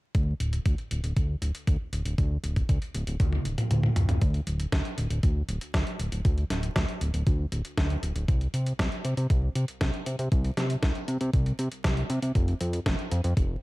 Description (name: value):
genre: italo disco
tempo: 118 BPM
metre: 4/4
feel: straight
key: unclear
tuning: A4 = 440 Hz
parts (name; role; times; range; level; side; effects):
- fat analog bass; bass; 0.1-13.6 s; D1 to C3; -28 LUFS; equal; tube saturation
- clean 12-bit digital drum machine; drums; 0.1-13.5 s; hi-hat, snare drum, toms; -32 LUFS; equal; none
- electronic kick drum; drums; 0.1-13.5 s; none; -26 LUFS; equal; none
room: little or no reverb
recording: vinyl crackle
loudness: -25 LUFS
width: side -20 dB against mid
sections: 0.1-4.2 A section; 4.2-13.6 B section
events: drum fill 3.2-4.2; kick drops out 3.7-4.2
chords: none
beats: | 0.15 0.66 1.17 1.67 | 2.18 2.69 3.20 3.71 | 4.22 4.72 5.23 5.74 | 6.25 6.76 7.27 7.78 | 8.28 8.79 9.30 9.81 | 10.32 10.83 11.34 11.84 | 12.35 12.86 13.37